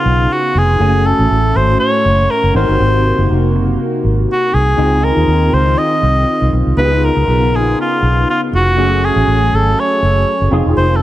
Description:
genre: pop.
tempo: 120 BPM.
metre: 4/4.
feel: swing 54% on 16ths.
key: Db major.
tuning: A4 = 440 Hz.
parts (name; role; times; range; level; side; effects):
warm cor anglais; melody; 0.0-11.0 s; F4 to Eb5; -15 LUFS; equal; none.
tine electric piano; accompaniment; 0.0-11.0 s; A3 to Ab5; -19 LUFS; left 1 dB; medium stereo tremolo, ensemble chorus.
warm analog pad; sustained chords; 0.0-11.0 s; A2 to Ab4; -22 LUFS; equal; chorus.
vintage muted fingered electric bass; bass; 0.1-11.0 s; Fb1 to Eb2; -14 LUFS; equal; none.
room: light reverb, digital ambience.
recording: none.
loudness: -11 LUFS.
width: side -14 dB against mid.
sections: 0.0-11.0 A section.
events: none.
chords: 0.0 Db7; 0.8 Gbmadd9; 2.5 Ab9; 4.8 Dbmaj9; 6.8 Db7; 8.8 Gbmadd9.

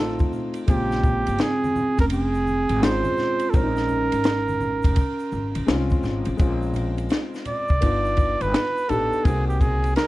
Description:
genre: hip hop, jazz-hop.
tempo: 84 BPM.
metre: 4/4.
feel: swing 64% on 16ths.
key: Bb dorian.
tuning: A4 = 441 Hz.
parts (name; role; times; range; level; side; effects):
warm flugelhorn; melody; 0.0-10.1 s; G4 to D5; -25 LUFS; right 2 dB; plate reverb.
vibraphone with soft mallets; second line; 0.0-5.7 s; Bb3 to F4; -27 LUFS; right 2 dB; none.
dark grand piano; accompaniment; 0.0-10.1 s; Db3 to C5; -28 LUFS; left 3 dB; plate reverb.
upright bass; bass; 0.0-9.9 s; F1 to C2; -26 LUFS; equal; none.
compact cocktail drum kit; drums; 0.2-10.1 s; hi-hat, kick drum, ride cymbal, snare drum; -23 LUFS; equal; none.
congas and tube shaker; percussion; 0.2-10.1 s; none; -36 LUFS; left 1 dB; none.
room: moderate small room reverb, RT60 0.5 s.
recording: dark, warm production.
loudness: -20 LUFS.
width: side -17 dB against mid.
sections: 0.0-6.4 A section; 6.4-10.1 B section.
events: flugelhorn solo 6.4-10.1.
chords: 0.0 F7; 0.7 Bbm9; 7.8 G7b13; 9.3 Cm7b5.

